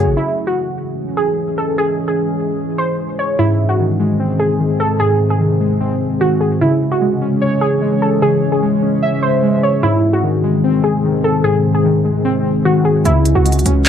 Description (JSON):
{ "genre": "hip hop, trap", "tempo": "149 BPM", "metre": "4/4", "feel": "half-time", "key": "C# harmonic minor", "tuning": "A4 = 440 Hz", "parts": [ { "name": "warbly dusty pluck", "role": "melody", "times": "0.0-13.9 s", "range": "E4 to C#5", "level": "-18 LUFS", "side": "right 1 dB", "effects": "chorus, low-pass filter" }, { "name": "warbly lo-fi synth keys", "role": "accompaniment", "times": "0.0-0.2, 3.4-13.9 s", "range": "G#2 to E5", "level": "-15 LUFS", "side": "left 1 dB", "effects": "chorus, low-pass filter" }, { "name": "deep dark ambient pad", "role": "sustained chords", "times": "0.0-13.9 s", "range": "B#2 to G#4", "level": "-22 LUFS", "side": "left 1 dB", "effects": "chorus, built-in reverb" }, { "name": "distorted 808-style bass", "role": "bass", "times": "0.0-0.2, 13.1-13.9 s", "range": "G#1 to C#2", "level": "-14 LUFS", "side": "equal", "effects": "distortion" }, { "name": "trap drum kit", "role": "drums", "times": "13.1-13.9 s", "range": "handclaps, hi-hat", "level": "-16 LUFS", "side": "right 1 dB", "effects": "overdrive" } ], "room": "light reverb", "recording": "dark, warm production, lossy compression artefacts", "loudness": "-13 LUFS", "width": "side -8 dB against mid", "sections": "0.2-6.6 A section; 6.6-13.9 B section", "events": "none", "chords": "0.2 C#m; 3.4 G#; 6.6 C#m; 9.8 G#; 13.1 C#m", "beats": "| 0.17 0.57 0.97 1.38 | 1.78 2.18 2.58 2.99 | 3.39 3.79 4.19 4.60 | 5.00 5.40 5.80 6.21 | 6.61 7.01 7.42 7.82 | 8.22 8.62 9.03 9.43 | 9.83 10.23 10.64 11.04 | 11.44 11.85 12.25 12.65 | 13.05 13.46 13.86" }